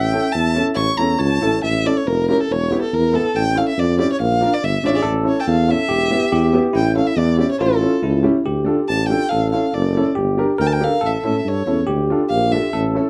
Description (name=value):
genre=klezmer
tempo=140 BPM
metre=2/4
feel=straight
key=A phrygian dominant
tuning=A4 = 440 Hz
part: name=dark violin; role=melody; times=0.0-12.7 s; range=A4 to C#6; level=-24 LUFS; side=equal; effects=none
part: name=bell-like tine electric piano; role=second line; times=0.0-1.6, 5.0-13.1 s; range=E4 to E5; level=-25 LUFS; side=equal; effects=none
part: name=warm tuba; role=bass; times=0.0-13.0 s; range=E1 to A2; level=-22 LUFS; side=equal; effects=none
part: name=clear upright piano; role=accompaniment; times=0.1-13.1 s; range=B3 to C#5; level=-24 LUFS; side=equal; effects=none
room=moderate small room reverb, RT60 0.5 s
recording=dark, warm production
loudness=-18 LUFS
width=mono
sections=0.0-1.6 A section; 1.6-8.5 B section; 8.5-13.1 C section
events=violin solo 0.0-1.6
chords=0.0 A; 2.5 E5; 3.3 A; 4.2 Bb; 5.0 A; 5.9 Em; 6.8 A; 8.5 Dm; 9.3 A; 10.2 Gm; 11.0 A; 11.9 Dm